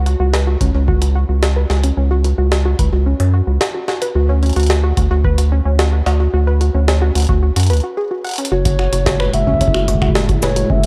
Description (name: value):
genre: IDM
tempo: 110 BPM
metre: 4/4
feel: straight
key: F# minor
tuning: A4 = 440 Hz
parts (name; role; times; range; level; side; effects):
- warbly dusty pluck; arpeggios; 0.0-10.9 s; C#4 to F#5; -24 LUFS; equal; chorus, delay
- round analog bass; bass; 0.0-10.9 s; F#1 to F#2; -17 LUFS; equal; none
- jungle sampler-style drum kit; drums; 0.1-10.9 s; finger snaps, hi-hat, shaker, snare drum; -24 LUFS; equal; none
- electronic kick drum; drums; 0.6-10.8 s; none; -20 LUFS; equal; none
- warbly nostalgic lead; melody; 8.5-10.9 s; C#5 to E5; -23 LUFS; equal; chorus, tape echo
- warbly tape-like pad; sustained chords; 9.2-10.9 s; A2 to F#4; -25 LUFS; equal; chorus, built-in reverb
room: little or no reverb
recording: dark, warm production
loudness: -15 LUFS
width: mono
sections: 0.0-8.5 A section; 8.5-10.9 B section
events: break 8.0-8.5; drum fill 8.2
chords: 0.0 C#sus4; 4.2 Dmaj7; 8.5 F#m9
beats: 0.34 0.88 1.43 | 1.97 2.52 3.06 3.61 | 4.15 4.70 5.25 5.79 | 6.34 6.88 7.43 7.97 | 8.52 9.06 9.61 10.15 | 10.70